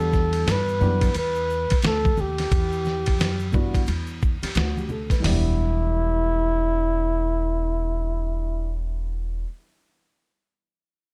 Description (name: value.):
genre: hip hop, jazz-hop.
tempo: 88 BPM.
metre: 4/4.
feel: swing 61% on 16ths.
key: E minor.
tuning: A4 = 436 Hz.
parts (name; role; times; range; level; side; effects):
breathy flugelhorn; melody; 0.0-8.7 s; E4 to B4; -28 LUFS; equal; none.
dark baby grand piano; accompaniment; 0.0-9.5 s; E3 to B4; -35 LUFS; equal; none.
upright bass; bass; 0.0-9.4 s; E1 to G2; -28 LUFS; equal; none.
dusty soul sampler-style drum kit; drums; 0.1-5.4 s; hi-hat, kick drum, ride cymbal, snare drum, toms; -27 LUFS; equal; none.
congas and tube shaker; percussion; 0.1-5.6 s; none; -38 LUFS; equal; none.
room: studio ambience.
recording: dark, warm production.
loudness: -23 LUFS.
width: mono.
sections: 0.0-5.2 A section; 5.2-8.0 B section.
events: none.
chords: 0.0 Em7.